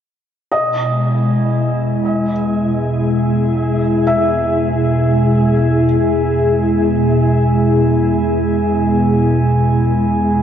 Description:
ambient; free time; E major; A4 = 439 Hz
glassy FM pad; sustained chords; 0.7-10.4 s; B2 to G#4; -14 LUFS; equal; ensemble chorus, built-in reverb
felt-muted upright piano; arpeggios; 0.5-10.4 s; D#5 to E5; -22 LUFS; equal; diffuse ambient delay
warm sub bass; bass; 0.5-10.4 s; E2; -26 LUFS; equal
glass harmonica; texture; 0.5-10.4 s; G#3 to G#5; -27 LUFS; right 2 dB
wet cathedral reverb, RT60 6.1 s; in a vast, echoing space, nothing above 7.5 kHz; -13 LUFS; side -9 dB against mid
0.5-10.4 A section
fade-in on sub bass 0.5-10.4; fade-in on glass harmonica 0.5-10.4
0.5 E

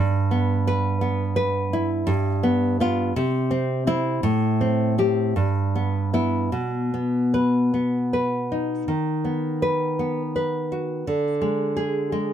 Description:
romantic piece for solo classical guitar; 49-58 BPM (dotted quarters); 6/8; rubato; E minor; A4 = 438 Hz
nylon-string guitar; solo; 0.0-12.3 s; G2 to B4; -20 LUFS; equal
light reverb; close, detailed microphones; -21 LUFS; side -10 dB against mid
0.0-8.9 A section; 8.9-12.3 A section
0.0 Em/G; 2.1 G7; 3.2 C; 4.2 Am7; 5.4 Em/G; 6.5 B; 8.9 B/D#; 11.1 E7/D (rootless)

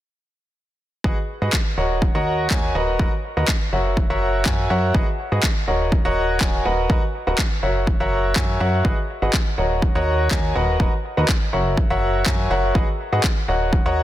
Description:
piano house; 123 BPM; 4/4; swing 53% on 16ths; G# minor; A4 = 440 Hz
clear grand piano; riff; 1.0-14.0 s; F#4 to G#5; -22 LUFS; equal; sidechain pumping, dub echo
plucky analog bass; bass; 1.0-14.0 s; D#1 to G#2; -23 LUFS; equal; sidechain pumping
electronic kick drum; drums; 1.0-13.8 s; -21 LUFS; equal
electronic handclaps; drums; 1.5-13.3 s; -26 LUFS; equal; overdrive
light reverb; dense, heavily limited modern master; -18 LUFS; side -13 dB against mid
1.0-14.0 A section
1.0 G#m7; 2.0 D#m7; 2.8 Bmaj7/D#; 4.0 F#7; 4.9 G#m7; 5.9 D#m7; 6.7 Bmaj7/D#; 7.9 F#7; 8.8 G#m7; 9.8 D#m7; 10.6 Bmaj7/D#; 11.8 F#7; 12.8 G#m7

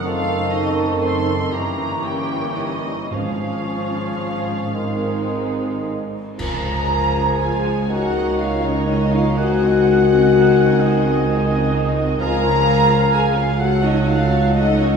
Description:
classical, slow romantic movement for symphony orchestra; 35-43 BPM (dotted quarters); 6/8; rubato; Db major; A4 = 440 Hz
rich symphonic violin section; melody; 0.0-15.0 s; C5 to C6; -30 LUFS; left 1 dB
clear clarinet; second line; 0.0-15.0 s; Eb4 to Bb5; -32 LUFS; right 2 dB
dark studio violin section; second line; 0.0-15.0 s; Bb3 to Bb5; -27 LUFS; right 1 dB
warm symphonic viola section; accompaniment; 0.0-15.0 s; Eb3 to A4; -29 LUFS; right 2 dB
rich studio double bass section; bass; 0.0-15.0 s; Gb1 to Db2; -24 LUFS; right 2 dB
rich symphonic cello section; bass; 0.0-15.0 s; Db2 to Ab2; -24 LUFS; right 2 dB
mellow hollow concert flute; second line; 0.1-15.0 s; Db5 to Db6; -28 LUFS; right 1 dB
warm cor anglais; second line; 0.1-14.7 s; G4 to Gb5; -29 LUFS; right 2 dB
clear bassoon; accompaniment; 0.1-15.0 s; Eb3 to Gb3; -26 LUFS; right 2 dB
dark French horn section; sustained chords; 0.1-15.0 s; Eb3 to Bb4; -22 LUFS; left 7 dB
cymbal swell, clash cymbals and concert bass drum; percussion; 3.1-8.4 s; -31 LUFS; equal
timpani; percussion; 3.1-4.7 s; Ab2; -32 LUFS; right 2 dB
wet recital hall reverb, RT60 1.7 s; recorded in a church or concert hall, small room ambience; -16 LUFS; side -6 dB against mid
0.0-6.4 A section; 6.4-15.0 B section
band accent 6.4-7.4
0.1 Ebm7b5/Gb; 1.5 Gdim7; 3.1 Db/Ab; 4.7 Ab; 6.4 Db; 7.9 Ebm7/Db; 9.4 Ab7/Db; 12.2 Db; 13.6 Gbm/Db

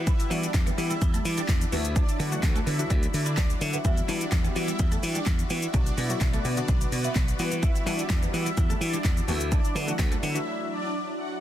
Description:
dance-pop; 127 BPM; 4/4; straight; E minor; A4 = 443 Hz
analog pluck; accompaniment; 0.0-10.9 s; D3 to G4; -36 LUFS; left 4 dB; chorus, sidechain pumping
lush unison pad; sustained chords; 0.0-11.4 s; F#3 to F#5; -36 LUFS; equal; chorus, sidechain pumping
twelve-string electric guitar; riff; 0.0-10.3 s; G3 to E4; -37 LUFS; right 3 dB; analog chorus
glassy slap bass; bass; 0.0-10.4 s; B1 to E3; -29 LUFS; equal; sidechain pumping
pop drum kit; drums; 0.1-10.5 s; handclaps, hi-hat, kick drum, shaker, snare drum; -26 LUFS; equal; overdrive
little or no reverb; dense, heavily limited modern master; -23 LUFS; side -12 dB against mid
0.0-11.4 A section
drop 0.0-11.4; break 10.5-11.4
0.0 Emadd9; 1.7 Dadd9; 3.8 Emadd9; 5.7 Bm; 7.4 Emadd9; 9.3 Dadd9

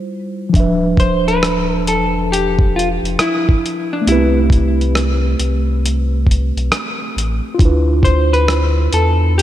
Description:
lo-fi hip hop; 68 BPM; 4/4; swing 64% on 16ths; D dorian; A4 = 440 Hz
mellow tine electric piano; accompaniment; 0.0-9.4 s; F3 to E5; -19 LUFS; equal; medium stereo tremolo, cassette tape
warm sub bass; bass; 0.5-9.4 s; D1 to E2; -17 LUFS; equal
dusty soul sampler-style drum kit; drums; 0.5-9.4 s; hi-hat, kick drum, rim click; -17 LUFS; equal
vintage hollow-body jazz guitar; melody; 1.0-9.4 s; D4 to C5; -18 LUFS; left 1 dB; ping-pong delay
moderate lush hall reverb, RT60 2.9 s; dreamy mix soaked in reverb, cassette tape; -13 LUFS; side -12 dB against mid
0.5-9.4 A section
break 0.0-0.5
0.0 Dm11 (rootless); 0.5 Dm69; 4.1 Am9/C; 7.6 Dm69

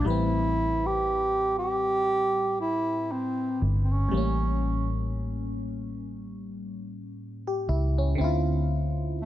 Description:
contemporary R&B; 59 BPM; 4/4; swing 58% on 16ths; A phrygian; A4 = 438 Hz
mellow bass clarinet; melody; 0.0-9.3 s; A3 to G4; -26 LUFS; right 1 dB; tape echo
FM electric piano; accompaniment; 0.0-9.3 s; A2 to B4; -32 LUFS; left 1 dB; chorus, phaser
vintage muted fingered electric bass; bass; 0.0-9.3 s; G1 to D2; -27 LUFS; equal
light reverb, studio reverb; -24 LUFS; side -13 dB against mid
0.0-9.3 A section
0.1 Am9; 4.1 A7b9; 8.2 Dm9

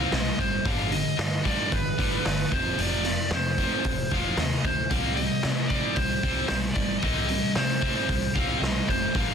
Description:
hard rock; 113 BPM; 4/4; straight; C harmonic minor; A4 = 443 Hz
lead guitar through a small cranked amp; melody; 0.0-9.3 s; B4 to F5; -29 LUFS; equal; overdrive
distorted electric guitar; riff; 0.0-9.3 s; F2 to C4; -32 LUFS; right 13 dB; distortion
scooped high-gain guitar; riff; 0.0-9.3 s; F2 to C4; -30 LUFS; left 11 dB; distortion
overdriven picked electric bass; bass; 0.0-9.3 s; F1 to C3; -32 LUFS; equal
raw garage drum kit; drums; 0.1-9.3 s; hi-hat, kick drum, snare drum; -28 LUFS; equal
light reverb, studio reverb; dense, heavily limited modern master; -23 LUFS; side -7 dB against mid
0.0-9.3 A section
0.0 Cm; 0.6 G; 2.5 F5; 4.9 Cm

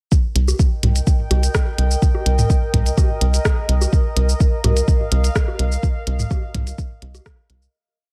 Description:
minimal techno; 126 BPM; 4/4; straight; C minor; A4 = 440 Hz
electronic kick drum; drums; 0.1-7.4 s; -19 LUFS; equal
minimal click drum kit; drums; 0.1-7.7 s; hi-hat, rim click, shaker; -28 LUFS; equal
warbly tape-like pad; texture; 0.9-7.7 s; Bb4 to G5; -30 LUFS; equal; chorus, built-in reverb, sidechain pumping
rubbery square bass; bass; 0.4-7.7 s; C2; -20 LUFS; equal; sidechain pumping
electronic bongos and toms; percussion; 0.5-7.2 s; -27 LUFS; equal; digital delay
little or no reverb; -18 LUFS; mono
0.1-7.7 drop
drop 0.1-7.7; fade-out 5.2-7.7
0.1 Cm

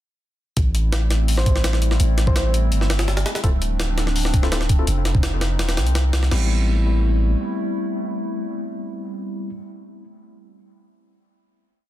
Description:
drum and bass, jungle; 167 BPM; 4/4; straight; A minor; A4 = 441 Hz
warbly tape-like pad; sustained chords; 0.8-9.5 s; F3 to E4; -29 LUFS; equal; chorus, built-in reverb
long sustained 808-style bass; bass; 0.6-7.4 s; D1 to C2; -19 LUFS; equal; tube saturation
jungle sampler-style drum kit; drums; 0.6-6.4 s; crash cymbal, hi-hat, kick drum, snare drum; -22 LUFS; equal; small room ambience
soft struck synth lead; melody; 1.4-2.5 s; C5; -32 LUFS; right 1 dB; chorus, dub echo
barky tine electric piano; stabs; 3.4-9.5 s; G3 to A4; -29 LUFS; left 3 dB; medium stereo tremolo, dub echo
little or no reverb; dense, heavily limited modern master; -18 LUFS; side -14 dB against mid
0.6-6.3 drop; 6.3-9.2 final chord
drop 0.6-6.3
0.6 Am7; 3.4 Dm7; 4.9 Fm7; 6.3 Am7

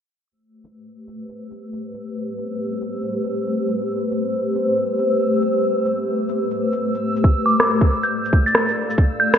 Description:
future garage; 138 BPM; 4/4; swing 63% on 16ths; A minor; A4 = 440 Hz
granular cloud pad; sustained chords; 1.2-9.4 s; A3 to F5; -21 LUFS; left 1 dB; built-in reverb, sidechain pumping
backwards swelling texture; texture; 0.3-9.4 s; E6; -34 LUFS; right 2 dB; built-in reverb
electronic shaker and rim click; drums; 0.6-9.4 s; -19 LUFS; right 1 dB; gated reverb
electronic kick drum; drums; 7.2-9.1 s; -15 LUFS; equal
glassy synth bell; melody; 7.5-9.4 s; D6 to A6; -20 LUFS; right 1 dB; chorus, tremolo, digital delay
wet lush hall reverb, RT60 1.8 s; bright 1980s-style digital production, low-pass filter; -18 LUFS; side -8 dB against mid
0.3-9.4 A section
filter sweep on ambient pad 0.3-9.4; filter sweep 0.3-9.4
0.3 Am9; 7.2 Dm/A

